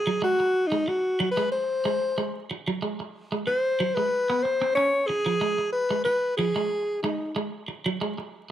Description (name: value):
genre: funk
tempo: 92 BPM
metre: 4/4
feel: straight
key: Ab mixolydian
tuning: A4 = 440 Hz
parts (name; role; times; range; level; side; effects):
- breathy alto saxophone; melody; 0.0-7.3 s; Eb4 to Db5; -24 LUFS; left 1 dB; none
- clean electric guitar; riff; 0.1-8.2 s; F3 to Db4; -30 LUFS; right 3 dB; spring reverb
room: moderate studio reverb, RT60 0.5 s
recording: vinyl crackle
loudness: -23 LUFS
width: side -11 dB against mid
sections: 0.0-8.5 A section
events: alto saxophone solo 0.0-8.5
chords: 0.0 Ab7; 4.8 Db (rootless); 7.4 Ab7(no3)